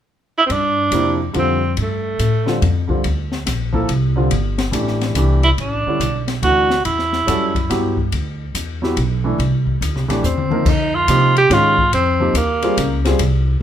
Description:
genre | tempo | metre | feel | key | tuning
modal jazz | 142 BPM | 3/4 | swing 66% on 8ths | unclear | A4 = 440 Hz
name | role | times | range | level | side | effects
warm tenor saxophone | melody | 0.4-2.9, 5.4-7.9, 10.3-13.0 s | A3 to G4 | -17 LUFS | right 2 dB | none
upright bass | bass | 0.5-13.6 s | G1 to C3 | -19 LUFS | equal | none
open jazz drum kit | drums | 0.5-13.3 s | crash cymbal, hi-hat, kick drum, ride cymbal, snare drum, toms | -24 LUFS | left 3 dB | none
warm concert grand piano | accompaniment | 0.9-13.2 s | C3 to Bb4 | -21 LUFS | equal | none
room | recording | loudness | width
light reverb | minimal, uncompressed stereo recording | -15 LUFS | side -10 dB against mid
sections
0.5-10.7 A section; 10.7-13.6 B section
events
drum fill 10.2-10.7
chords
0.5 G9sus4; 5.6 A9sus4; 9.4 C7; 10.7 Fm11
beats
0.07 | 0.50 0.92 1.34 | 1.77 2.19 2.62 | 3.04 3.46 3.89 | 4.31 4.73 5.16 | 5.58 6.00 6.43 | 6.85 7.28 7.70 | 8.12 8.55 8.97 | 9.39 9.81 10.24 | 10.66 11.08 11.51 | 11.93 12.35 12.78 | 13.20

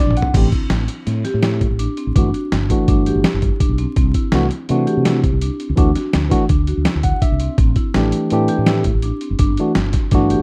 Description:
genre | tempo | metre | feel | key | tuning
progressive instrumental, band music in an uneven meter | 166 BPM | 5/4 | straight | unclear | A4 = 441 Hz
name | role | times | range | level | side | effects
barky tine electric piano | accompaniment | 0.0-10.4 s | E3 to F#5 | -21 LUFS | equal | overdrive
marimba with medium hard mallets | arpeggios | 0.0-10.4 s | C4 to G4 | -26 LUFS | equal | none
mellow fretless electric bass | bass | 0.1-10.4 s | F#1 to C3 | -22 LUFS | equal | subtle chorus
lo-fi sampler-style drum kit | drums | 0.1-10.4 s | crash cymbal, hi-hat, kick drum, snare drum, toms | -20 LUFS | equal | none
room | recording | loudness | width
little or no reverb | rough home demo mix, vinyl crackle | -17 LUFS | mono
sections
0.3-10.4 A section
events
tine electric piano fill 0.0-0.3, 6.9-7.6; drum fill 0.0-0.3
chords
0.3 Am7; 2.2 Gmaj7(no3); 4.0 Cadd9; 5.8 Dadd9; 7.6 Am7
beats
| 0.34 0.70 1.06 1.43 1.79 | 2.15 2.51 2.88 3.24 3.60 | 3.96 4.33 4.69 5.05 5.41 | 5.78 6.14 6.50 6.86 7.22 | 7.58 7.95 8.31 8.67 9.03 | 9.40 9.76 10.12

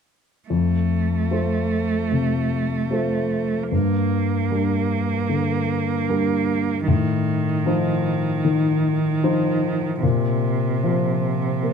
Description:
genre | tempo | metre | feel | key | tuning
neoclassical piano and strings | 76 BPM | 4/4 | rubato | F major | A4 = 440 Hz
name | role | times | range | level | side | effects
rich cello | second line | 0.5-11.7 s | C3 to Bb3 | -24 LUFS | right 6 dB | none
warm grand piano | accompaniment | 0.5-11.7 s | F2 to C5 | -21 LUFS | left 3 dB | none
room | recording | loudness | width
little or no reverb | close, detailed microphones | -19 LUFS | side -6 dB against mid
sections
0.5-11.7 A section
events
none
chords
0.5 F; 3.7 Gm; 6.9 F7/A; 10.0 Bbsus2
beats
| 0.52 1.32 2.12 2.92 | 3.72 4.51 5.30 6.09 | 6.87 7.66 8.44 9.23 | 10.02 10.82 11.62

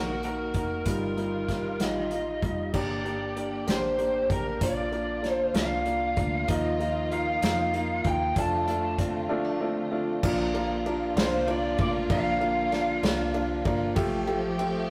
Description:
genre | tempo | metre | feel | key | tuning
six-eight pop ballad | 64 BPM (dotted quarters) | 6/8 | straight | Bb major | A4 = 440 Hz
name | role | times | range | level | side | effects
lead guitar through a small cranked amp | melody | 0.0-13.0 s | Bb4 to A5 | -32 LUFS | equal | overdrive
warm upright piano | accompaniment | 0.0-14.8 s | G3 to G4 | -32 LUFS | equal | none
warm studio string section | sustained chords | 0.0-14.9 s | D3 to G4 | -38 LUFS | equal | none
vintage muted fingered electric bass | bass | 0.0-14.9 s | F1 to F2 | -39 LUFS | equal | none
unplugged drum kit | drums | 0.2-14.7 s | crash cymbal, hi-hat, kick drum, ride cymbal, snare drum | -33 LUFS | equal | none
direct-recorded clean electric guitar | arpeggios | 6.5-14.9 s | F3 to F4 | -40 LUFS | equal | none
room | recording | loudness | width
wet stone room reverb, RT60 1.1 s | rough rehearsal-room recording, warm saturation | -27 LUFS | mono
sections
0.0-2.7 A section; 2.7-10.2 B section; 10.2-14.9 C section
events
none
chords
0.0 Gb6; 0.9 Ebadd9/G; 2.7 Gm; 4.6 Bb; 6.5 Ebsus2; 8.4 F6; 10.2 Bb; 14.0 Fadd9/A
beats
| 0.86 1.80 | 2.74 3.68 | 4.62 5.55 | 6.49 7.43 | 8.36 9.30 | 10.23 11.17 | 12.10 13.03 | 13.97

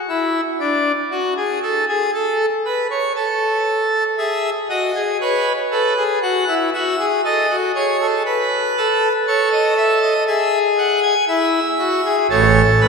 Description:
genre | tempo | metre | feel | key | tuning
classical, baroque-style 4-part fugue for pipe organ | 59 BPM | 4/4 | straight | unclear | A4 = 439 Hz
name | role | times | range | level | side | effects
pipe organ, full organ | solo | 0.1-12.9 s | G#1 to G#5 | -15 LUFS | equal | none
room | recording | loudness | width
wet church reverb, RT60 3.4 s | recorded in a church or concert hall | -15 LUFS | side -4 dB against mid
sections
0.0-12.9 A section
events
none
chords
0.0 N.C.; 4.2 E; 6.2 F#m7; 8.3 B7; 10.3 E/G#; 12.3 A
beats
| 0.09 1.12 2.14 3.16 | 4.18 5.21 6.23 7.25 | 8.26 9.27 10.28 11.29 | 12.30

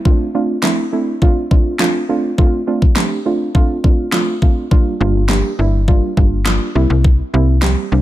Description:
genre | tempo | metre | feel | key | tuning
dance-pop | 103 BPM | 4/4 | straight | D minor | A4 = 441 Hz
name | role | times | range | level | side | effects
deep mellow chord stab | accompaniment | 0.1-8.0 s | G3 to G4 | -18 LUFS | right 2 dB | chorus, sidechain pumping
pop drum kit | drums | 0.1-7.8 s | handclaps, kick drum, snare drum | -14 LUFS | equal | overdrive
slap-like FM bass | bass | 5.0-8.0 s | G1 to C2 | -14 LUFS | equal | sidechain pumping
room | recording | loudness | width
little or no reverb | none | -12 LUFS | side -14 dB against mid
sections
0.0-8.0 A section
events
none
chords
0.1 Dm7; 4.7 Gm7; 6.8 C7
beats
| 0.05 0.64 1.22 1.80 | 2.38 2.97 3.55 4.13 | 4.71 5.30 5.88 6.46 | 7.04 7.63

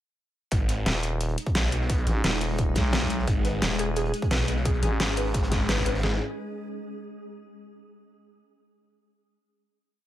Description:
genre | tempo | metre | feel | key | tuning
dark technical drum and bass | 174 BPM | 4/4 | straight | G# minor | A4 = 440 Hz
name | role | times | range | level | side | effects
swarming drone | sustained chords | 1.2-6.2 s | G#3 to G#4 | -34 LUFS | left 1 dB | built-in reverb, sidechain pumping
snarling distorted saw bass | bass | 0.5-6.2 s | G#1 to B1 | -28 LUFS | equal | distortion, overdrive, sidechain pumping
crunchy breakbeat drum kit | drums | 0.5-6.0 s | hi-hat, snare drum | -40 LUFS | equal | none
dubstep drum kit | drums | 0.5-6.1 s | kick drum, snare drum | -27 LUFS | equal | none
dubstep drum kit | drums | 0.5-5.9 s | hi-hat, rim click, snare drum | -28 LUFS | equal | none
growling FM bass | bass | 0.9-5.0 s | D#1 to B1 | -27 LUFS | equal | none
warbly dusty pluck | arpeggios | 3.4-6.2 s | G#4 to B4 | -33 LUFS | equal | analog chorus, sidechain pumping, digital delay
room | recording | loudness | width
digital ambience | none | -23 LUFS | side -13 dB against mid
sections
0.5-6.0 drop; 6.0-7.4 final chord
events
drop 0.5-6.0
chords
0.5 G#m; 6.0 G#5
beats
| 0.52 0.86 1.21 1.55 | 1.90 2.24 2.59 2.93 | 3.27 3.62 3.96 4.31 | 4.65 5.00 5.34 5.69 | 6.03

